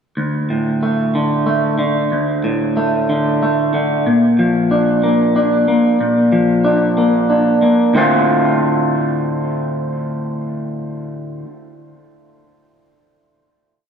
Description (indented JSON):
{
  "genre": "post-rock",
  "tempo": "62 BPM (dotted quarters)",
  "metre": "6/8",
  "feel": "straight",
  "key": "D minor",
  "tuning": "A4 = 444 Hz",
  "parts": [
    { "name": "electric guitar through a small old amp", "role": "solo", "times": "0.2-11.5 s", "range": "D2 to F4", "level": "-14 LUFS", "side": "equal", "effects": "slapback echo, tape echo" }
  ],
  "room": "wet lush hall reverb, RT60 1.9 s, digital ambience",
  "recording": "big arena sound",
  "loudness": "-13 LUFS",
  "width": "side -7 dB against mid",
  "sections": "0.2-8.0 A section; 8.0-11.9 final chord",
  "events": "none",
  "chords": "0.2 D5; 4.1 Bb; 8.0 Dm7",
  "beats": "| 0.16 1.14 | 2.11 3.09 | 4.06 5.04 | 6.01 6.98 | 7.95 8.93 | 9.90 10.88"
}